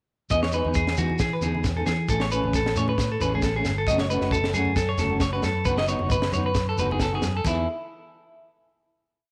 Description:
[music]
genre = highlife guitar band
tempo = 134 BPM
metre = 4/4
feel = swing 55% on 16ths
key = E major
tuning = A4 = 442 Hz
[part]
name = electric guitar at the edge of break-up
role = accompaniment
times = 0.3-7.6 s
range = E3 to G#4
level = -33 LUFS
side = equal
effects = warbly pitch drift
[part]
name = clean electric guitar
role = arpeggios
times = 0.3-7.7 s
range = E4 to D#5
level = -29 LUFS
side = equal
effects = spring reverb, slapback echo
[part]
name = fingered electric bass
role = bass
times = 0.3-7.7 s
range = F#1 to E3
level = -30 LUFS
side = equal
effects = none
[part]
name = tight funk drum kit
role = drums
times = 0.3-7.6 s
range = crash cymbal, kick drum, snare drum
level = -31 LUFS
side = equal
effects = none
[part]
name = shekere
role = percussion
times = 0.3-7.7 s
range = none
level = -36 LUFS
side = equal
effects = none
[part]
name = congas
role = percussion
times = 0.6-7.7 s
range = none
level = -37 LUFS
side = equal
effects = none
[sound]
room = light reverb, small room ambience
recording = none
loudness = -24 LUFS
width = mono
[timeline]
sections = 0.3-7.5 groove; 7.5-9.3 final chord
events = none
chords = 0.3 Emaj7; 2.1 Amaj7; 3.9 F#m; 7.5 Emaj7(no3)

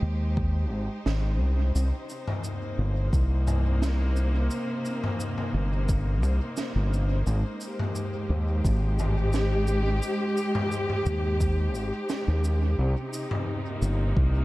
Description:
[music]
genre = ambient dub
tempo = 87 BPM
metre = 4/4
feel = straight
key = C minor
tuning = A4 = 441 Hz
[part]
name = clear studio string section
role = sustained chords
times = 0.0-14.4 s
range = C3 to C5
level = -31 LUFS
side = equal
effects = none
[part]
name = growling fingered electric bass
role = bass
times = 0.0-14.4 s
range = G1 to Eb2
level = -24 LUFS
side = equal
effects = overdrive
[part]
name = electronic kick drum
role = drums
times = 0.4-14.3 s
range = none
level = -27 LUFS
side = equal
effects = overdrive
[part]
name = raw garage drum kit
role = drums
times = 1.1-14.0 s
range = cabasa, snare drum, toms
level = -34 LUFS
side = equal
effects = dub echo
[sound]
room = little or no reverb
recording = dark, warm production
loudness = -24 LUFS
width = side -19 dB against mid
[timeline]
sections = 0.0-12.8 A section; 12.8-14.4 B section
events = fade-in on string section 0.0-12.8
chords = 0.0 Abmaj7; 1.8 Cm7; 7.3 Abmaj7; 12.8 Cm7

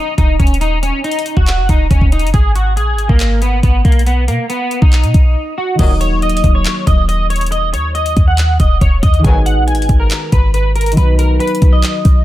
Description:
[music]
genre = hip hop, trap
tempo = 139 BPM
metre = 4/4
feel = half-time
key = Eb minor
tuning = A4 = 440 Hz
[part]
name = electric guitar at the edge of break-up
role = melody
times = 0.0-12.2 s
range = Bb3 to Ab5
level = -18 LUFS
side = equal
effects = analog chorus
[part]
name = concert harp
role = accompaniment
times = 0.0-0.3, 5.7-12.2 s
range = Eb3 to Gb4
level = -21 LUFS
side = equal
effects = none
[part]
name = clean 808-style bass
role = bass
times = 0.2-12.2 s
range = Eb1 to B2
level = -13 LUFS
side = equal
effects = none
[part]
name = trap drum kit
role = drums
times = 0.2-12.2 s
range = crash cymbal, handclaps, hi-hat, kick drum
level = -13 LUFS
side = equal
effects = none
[part]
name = clear brass ensemble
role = stabs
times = 5.8-5.9, 9.2-9.4 s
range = Bb2 to Gb3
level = -27 LUFS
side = left 4 dB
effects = none
[sound]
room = digital ambience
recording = none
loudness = -10 LUFS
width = side -14 dB against mid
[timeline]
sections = 0.0-5.8 A section; 5.8-12.2 B section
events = break 0.0-5.8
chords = 0.0 N.C.; 2.3 Abm; 4.1 B; 5.8 Ebm; 9.2 Abm7; 11.0 B

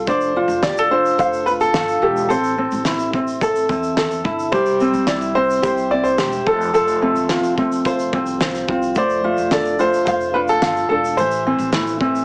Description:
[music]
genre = acoustic pop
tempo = 108 BPM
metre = 4/4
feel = straight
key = unclear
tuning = A4 = 440 Hz
[part]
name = ukulele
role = accompaniment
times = 0.0-12.2 s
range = C4 to F5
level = -22 LUFS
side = equal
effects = none
[part]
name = nylon-string guitar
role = arpeggios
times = 0.0-12.2 s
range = E3 to A4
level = -27 LUFS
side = equal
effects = none
[part]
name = upright bass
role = bass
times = 0.0-12.2 s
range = E1 to E2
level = -34 LUFS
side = equal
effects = none
[part]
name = clear upright piano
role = melody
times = 0.1-11.7 s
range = G4 to D5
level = -22 LUFS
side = equal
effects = none
[part]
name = loose indie drum kit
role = drums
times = 0.1-12.2 s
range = kick drum, shaker, snare drum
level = -28 LUFS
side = equal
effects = none
[sound]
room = moderate small room reverb, RT60 0.6 s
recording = heavily compressed radio sound, multiband compression, small speaker sound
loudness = -18 LUFS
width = mono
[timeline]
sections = 0.0-12.2 A section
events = none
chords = 0.1 Dm/F; 2.3 Am; 4.5 C; 6.5 F; 9.0 Dm/F; 11.2 Am

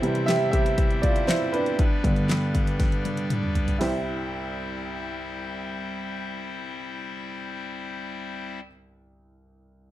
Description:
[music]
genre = piano-driven pop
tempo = 119 BPM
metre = 4/4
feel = straight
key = C major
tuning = A4 = 440 Hz
[part]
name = warm upright piano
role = accompaniment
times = 0.0-9.9 s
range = C2 to E5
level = -26 LUFS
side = right 2 dB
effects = none
[part]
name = pipe organ, clarinet reed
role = sustained chords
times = 0.0-8.6 s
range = G3 to E5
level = -33 LUFS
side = left 4 dB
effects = none
[part]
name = pop drum kit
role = drums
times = 0.0-3.9 s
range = handclaps, hi-hat, kick drum, snare drum, toms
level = -24 LUFS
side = left 1 dB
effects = none
[sound]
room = light reverb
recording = dark, warm production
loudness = -24 LUFS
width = side -14 dB against mid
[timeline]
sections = 0.0-3.8 A section; 3.8-7.8 B section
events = upright piano solo 0.0-3.8; drum fill 2.8-3.8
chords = 0.0 C; 1.8 G; 3.8 C

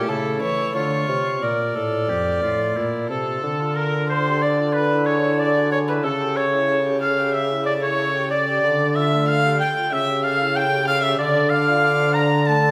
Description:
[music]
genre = classical, baroque-style sonata movement with continuo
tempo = 92 BPM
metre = 4/4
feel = straight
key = D minor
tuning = A4 = 440 Hz
[part]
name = clear oboe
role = melody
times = 0.0-12.7 s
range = E4 to Bb5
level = -25 LUFS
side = equal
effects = none
[part]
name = warm violin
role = second line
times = 0.0-12.7 s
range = G4 to Bb5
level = -27 LUFS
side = equal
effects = none
[part]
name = chamber organ, principal chorus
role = accompaniment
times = 0.0-12.7 s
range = F2 to D5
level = -28 LUFS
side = equal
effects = none
[part]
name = dark bassoon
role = bass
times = 0.0-12.7 s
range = F2 to E3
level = -26 LUFS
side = equal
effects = none
[sound]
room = wet recital hall reverb, RT60 1.4 s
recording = none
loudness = -20 LUFS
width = mono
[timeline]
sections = 0.0-3.4 A section; 3.4-12.7 B section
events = none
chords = 0.0 A; 0.7 Dm; 4.7 E7/D; 6.0 A7/C#; 8.6 Dm; 9.9 A7/C#; 11.2 Dm

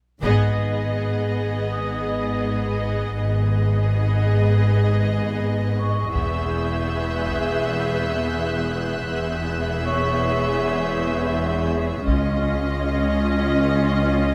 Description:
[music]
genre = cinematic, suspense film score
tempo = 81 BPM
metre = 4/4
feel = straight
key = G# minor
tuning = A4 = 440 Hz
[part]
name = muted symphonic violin section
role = melody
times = 0.2-14.3 s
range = D#5 to E5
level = -31 LUFS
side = equal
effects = none
[part]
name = muted symphonic viola section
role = accompaniment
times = 0.2-14.3 s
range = B3 to G#4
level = -29 LUFS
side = equal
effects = none
[part]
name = muted symphonic cello section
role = bass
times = 0.2-14.3 s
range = C#2 to G#2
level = -27 LUFS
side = equal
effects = none
[part]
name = muted symphonic double bass section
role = bass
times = 0.2-14.3 s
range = E1 to C#2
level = -27 LUFS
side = equal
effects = none
[part]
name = taiko ensemble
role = drums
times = 0.2-1.7, 6.2-7.6, 12.1-13.5 s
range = none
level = -30 LUFS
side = equal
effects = none
[part]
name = vibraphone with hard mallets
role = texture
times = 1.7-12.1 s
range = C#5 to D#6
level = -34 LUFS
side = equal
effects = none
[part]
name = muted symphonic violin section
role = texture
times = 6.1-11.7 s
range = E6 to G6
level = -36 LUFS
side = equal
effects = none
[sound]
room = moderate concert hall reverb, RT60 2.3 s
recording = faint mains hum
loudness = -22 LUFS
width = mono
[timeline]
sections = 0.2-14.3 A section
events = break 0.0; band accent 0.2-1.0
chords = 0.2 G#m; 6.2 E; 12.1 C#add9

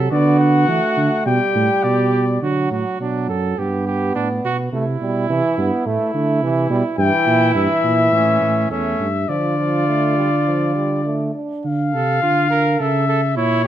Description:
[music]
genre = classical, imitative canzona for brass ensemble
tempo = 104 BPM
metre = 4/4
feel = straight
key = D minor from 7.0 s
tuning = A4 = 440 Hz
[part]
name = warm trumpet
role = second line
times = 0.0-13.7 s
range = C#4 to Bb4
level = -23 LUFS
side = right 5 dB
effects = none
[part]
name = clear trombone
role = accompaniment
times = 0.0-11.6 s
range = E3 to D4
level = -22 LUFS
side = right 2 dB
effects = none
[part]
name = dark tuba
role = bass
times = 0.0-13.7 s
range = E2 to E3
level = -20 LUFS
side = right 2 dB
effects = none
[part]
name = warm cornet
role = melody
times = 0.1-2.4, 7.0-13.7 s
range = C#5 to G5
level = -20 LUFS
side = left 6 dB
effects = none
[sound]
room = moderate stone room reverb, RT60 1.2 s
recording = none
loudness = -16 LUFS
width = side -11 dB against mid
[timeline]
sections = 0.0-2.4 A section; 2.4-11.6 B section; 11.6-13.7 C section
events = none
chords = 0.0 D; 1.3 G; 2.4 Bm; 3.6 G; 4.7 C; 5.9 Am; 7.0 Edim/G; 8.1 A; 9.3 Dm; 12.8 A/C#

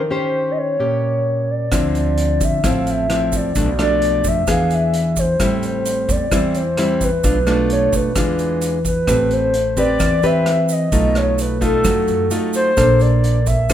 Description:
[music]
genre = bossa nova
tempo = 130 BPM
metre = 4/4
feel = straight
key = A minor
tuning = A4 = 442 Hz
[part]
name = hollow clarinet-like synth lead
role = melody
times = 0.0-13.7 s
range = A4 to F5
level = -19 LUFS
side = equal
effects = chorus
[part]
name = nylon-string guitar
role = accompaniment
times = 0.0-13.7 s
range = A2 to B#4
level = -19 LUFS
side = equal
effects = none
[part]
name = upright bass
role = bass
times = 1.7-13.7 s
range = A1 to F#2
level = -22 LUFS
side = equal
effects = none
[part]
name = vintage drum kit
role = drums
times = 1.7-13.7 s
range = hi-hat, kick drum, rim click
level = -24 LUFS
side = equal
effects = none
[part]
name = egg shaker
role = percussion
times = 1.7-13.7 s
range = none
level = -30 LUFS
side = right 6 dB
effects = none
[sound]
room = moderate recital hall reverb, RT60 1.6 s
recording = recorded in a church or concert hall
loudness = -15 LUFS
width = side -10 dB against mid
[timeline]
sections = 0.0-9.1 A section; 9.1-13.7 B section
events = none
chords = 0.0 D#6; 1.7 Dm9; 3.6 Bm7b5; 4.5 E7; 5.4 Am7; 7.2 Bm7b5; 8.2 E7b9; 9.1 Am9; 10.9 B7#11; 12.8 Bbmaj9

